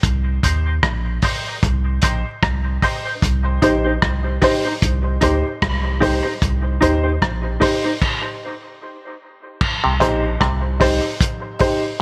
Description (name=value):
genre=dub reggae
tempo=75 BPM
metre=4/4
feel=swing 58% on 16ths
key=C minor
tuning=A4 = 440 Hz
part: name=soft dub sub bass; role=bass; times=0.0-11.0 s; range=Bb1 to Eb2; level=-23 LUFS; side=equal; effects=none
part: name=vintage drum kit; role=drums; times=0.0-11.8 s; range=crash cymbal, hi-hat, kick drum, rim click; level=-23 LUFS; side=equal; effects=none
part: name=mellow electric guitar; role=accompaniment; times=0.4-7.9 s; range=Eb4 to C5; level=-26 LUFS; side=equal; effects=analog chorus, high-pass filter, dub echo
part: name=dark upright piano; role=stabs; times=0.4-11.8 s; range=Eb4 to C5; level=-24 LUFS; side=equal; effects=high-pass filter, dub echo
part: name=muted clav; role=riff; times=9.8-10.6 s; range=Bb2 to C3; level=-25 LUFS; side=equal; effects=dub echo
room=light reverb, studio reverb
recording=none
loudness=-19 LUFS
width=mono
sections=0.0-9.6 A section; 9.6-12.0 B section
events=stop 8.0-9.6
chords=0.0 Cm